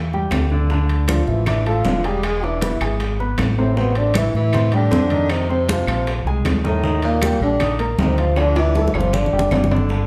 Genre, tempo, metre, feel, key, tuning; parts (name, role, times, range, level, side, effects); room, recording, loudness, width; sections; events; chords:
Afro-Cuban jazz; 157 BPM; 4/4; straight; A4 = 436 Hz
trombone with bucket mute; melody; 0.0-9.7 s; A3 to G#4; -25 LUFS; equal
breathy tenor saxophone; second line; 0.0-9.7 s; A2 to G#3; -31 LUFS; equal
warm concert grand piano; accompaniment; 0.0-10.1 s; C3 to Eb6; -26 LUFS; equal
fingered electric bass; bass; 0.0-10.1 s; E1 to A2; -23 LUFS; equal
congas; percussion; 0.1-10.1 s; -28 LUFS; equal
bongos; percussion; 0.3-10.1 s; -34 LUFS; equal
claves; percussion; 0.3-9.7 s; -38 LUFS; equal
timbales; percussion; 0.3-9.8 s; -30 LUFS; equal
wet large studio reverb, RT60 1.0 s; heard from further back in the room; -19 LUFS; mono
0.0-9.9 A section
drum fill 8.4-9.9
0.0 A7(no3) (rootless); 0.7 Dmadd9; 2.2 E7; 3.8 Am7; 5.3 F5; 6.1 Bbsus2; 6.8 Ebmaj13; 8.4 Dmadd9; 9.1 G5